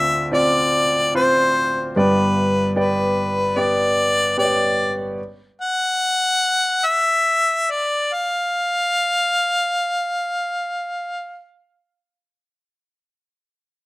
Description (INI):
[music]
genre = pop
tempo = 54-75 BPM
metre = 4/4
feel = straight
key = unclear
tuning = A4 = 440 Hz
[part]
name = clear harmonica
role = melody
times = 0.0-11.5 s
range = B4 to Gb5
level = -18 LUFS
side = left 1 dB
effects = slapback echo
[part]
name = warm concert grand piano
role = accompaniment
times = 0.0-5.2 s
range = G1 to D5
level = -19 LUFS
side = equal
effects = none
[sound]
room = light reverb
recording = recorded outdoors, with no room sound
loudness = -17 LUFS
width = side -22 dB against mid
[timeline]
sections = 0.0-12.5 A section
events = slowing down 5.2-12.5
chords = 0.0 Dm7; 1.9 G; 5.2 N.C.